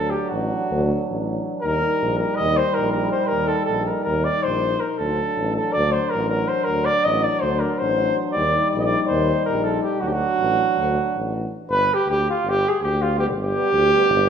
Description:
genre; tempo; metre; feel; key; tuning
balkan folk, Balkan brass band; 322 BPM (eighths); 9/8; straight; D phrygian dominant; A4 = 441 Hz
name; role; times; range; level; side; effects
warm flugelhorn; melody; 0.0-14.3 s; F4 to Eb5; -20 LUFS; equal; none
clear euphonium; accompaniment; 0.0-14.1 s; F#3 to G3; -28 LUFS; right 6 dB; none
warm euphonium; accompaniment; 0.0-14.1 s; B3 to Eb4; -28 LUFS; left 6 dB; none
mellow tuba; bass; 0.0-14.3 s; G1 to Eb2; -26 LUFS; equal; none
room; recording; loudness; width
wet recital hall reverb, RT60 1.4 s; minimal, uncompressed stereo recording; -19 LUFS; side -7 dB against mid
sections
0.0-11.7 A section; 11.7-14.3 B section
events
none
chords
0.0 D; 1.6 Eb; 5.0 D; 8.3 Eb; 10.0 D; 11.7 G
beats
0.13 0.32 0.50 0.69 0.88 1.07 1.25 1.44 | 1.63 1.82 2.00 2.19 2.38 2.56 2.75 2.94 3.13 | 3.31 3.50 3.69 3.87 4.06 4.25 4.43 4.62 4.81 | 5.00 5.18 5.37 5.55 5.74 5.93 6.12 6.30 6.49 | 6.67 6.86 7.05 7.23 7.42 7.61 7.79 7.98 8.16 | 8.35 8.54 8.72 8.91 9.09 9.28 9.46 9.65 9.83 | 10.02 10.21 10.39 10.57 10.76 10.95 11.13 11.31 11.50 | 11.68 11.87 12.05 12.24 12.42 12.61 12.79 12.97 13.16 | 13.34 13.52 13.71 13.89 14.07 14.26

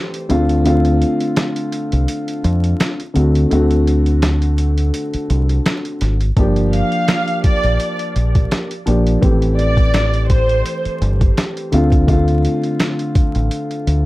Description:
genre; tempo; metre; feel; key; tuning
hip hop, boom-bap hip-hop; 84 BPM; 4/4; swing 55% on 16ths; D minor; A4 = 438 Hz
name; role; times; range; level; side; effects
dark grand piano; accompaniment; 0.0-14.1 s; D3 to G4; -19 LUFS; equal; none
boom bap sampler-style drum kit; drums; 0.1-14.1 s; hi-hat, kick drum, snare drum; -18 LUFS; equal; none
deep dub fingered electric bass; bass; 0.3-14.1 s; G1 to F2; -15 LUFS; equal; none
warm studio violin section; melody; 6.7-10.8 s; C5 to F5; -21 LUFS; equal; analog delay
room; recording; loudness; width
light reverb; dark, warm production, vinyl crackle; -14 LUFS; side -18 dB against mid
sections
0.0-14.1 A section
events
break 0.0-6.4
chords
0.3 Dm7; 3.2 D7; 6.4 Gm7; 9.2 Am7; 11.7 Dm7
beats
| 0.65 1.37 2.08 2.80 | 3.51 4.22 4.94 5.65 | 6.37 7.08 7.80 8.51 | 9.22 9.94 10.65 11.37 | 12.08 12.80 13.51

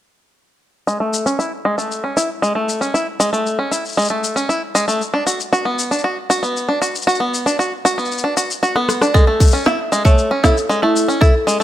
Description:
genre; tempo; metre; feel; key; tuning
folktronica; 116 BPM; 4/4; straight; A major; A4 = 439 Hz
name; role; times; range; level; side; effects
bluegrass banjo; arpeggios; 0.9-11.6 s; G#3 to F#4; -17 LUFS; equal; low-pass filter, tape echo
electronic shaker, rim click and snare drum; drums; 0.9-11.6 s; none; -22 LUFS; left 3 dB; studio ambience
marimba with hard mallets; second line; 9.1-11.3 s; E4 to E5; -19 LUFS; right 1 dB; tape echo
electronic kick drum; drums; 9.1-11.3 s; none; -12 LUFS; equal; studio ambience
room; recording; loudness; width
light reverb; none; -15 LUFS; side -12 dB against mid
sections
0.9-9.1 A section; 9.1-11.6 B section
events
filter sweep on five-string banjo 0.9-9.1; drum fill 8.8-9.1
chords
0.9 Amaj7; 5.0 Bm; 9.1 Amaj7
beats
| 0.87 1.39 1.90 2.42 | 2.94 3.46 3.97 4.49 | 5.01 5.53 6.04 6.56 | 7.08 7.59 8.11 8.63 | 9.15 9.66 10.18 10.70 | 11.21

